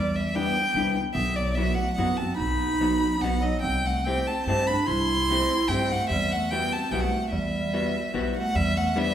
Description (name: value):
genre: musette waltz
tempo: 146 BPM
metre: 3/4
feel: straight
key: E minor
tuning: A4 = 439 Hz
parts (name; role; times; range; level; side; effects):
- rich violin; melody; 0.0-9.1 s; D5 to C6; -27 LUFS; left 1 dB; none
- growling clarinet; second line; 0.0-9.1 s; F#3 to E4; -29 LUFS; right 3 dB; none
- upright bass; bass; 0.0-9.1 s; B1 to G2; -30 LUFS; equal; none
- vintage hollow-body jazz guitar; accompaniment; 0.3-9.1 s; F#3 to G4; -30 LUFS; left 2 dB; none
room: wet recital hall reverb, RT60 1.6 s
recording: recorded in a church or concert hall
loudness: -23 LUFS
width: side -10 dB against mid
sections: 0.0-8.6 A section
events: none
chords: 0.0 Em7; 1.2 Bsus4; 2.4 B; 3.6 C6; 6.1 Emadd9; 8.6 Em7